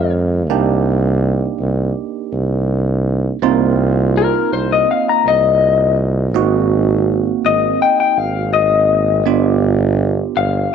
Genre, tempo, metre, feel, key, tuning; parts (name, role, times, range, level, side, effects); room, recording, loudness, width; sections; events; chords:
straight-eighth soul blues; 82 BPM; 4/4; straight; C minor; A4 = 440 Hz
electric guitar through a small old amp; melody; 0.0-10.7 s; Bb4 to Bb5; -15 LUFS; left 8 dB
bell-like tine electric piano; accompaniment; 0.0-10.7 s; Ab3 to G4; -19 LUFS; right 13 dB; phaser
warm tuba; bass; 0.0-10.7 s; G1 to F2; -17 LUFS; equal
moderate spring reverb, RT60 2.2 s; 1960s-style stereo with parts hard left and right; -13 LUFS; side -7 dB against mid
0.0-10.7 A section
0.0 Fm7; 0.5 Cm7; 6.3 Ab7; 9.3 G7